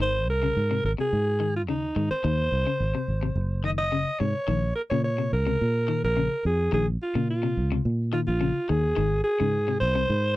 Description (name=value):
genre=afrobeat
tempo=107 BPM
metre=4/4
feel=straight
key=Bb minor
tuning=A4 = 439 Hz
part: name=growling alto saxophone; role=melody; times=0.0-10.3 s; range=Eb4 to Eb5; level=-26 LUFS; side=right 1 dB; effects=none
part: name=electric guitar at the edge of break-up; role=arpeggios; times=0.0-10.1 s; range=C3 to Eb3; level=-30 LUFS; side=left 5 dB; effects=none
part: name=fingered electric bass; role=bass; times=0.0-10.4 s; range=Gb1 to Bb2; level=-26 LUFS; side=right 1 dB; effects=none
room=little or no reverb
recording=dry, close 1970s-style studio recording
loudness=-23 LUFS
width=side -17 dB against mid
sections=0.0-4.5 A section; 4.5-10.4 B section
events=none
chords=0.0 Ab7; 4.5 Bbmadd9; 9.0 Ab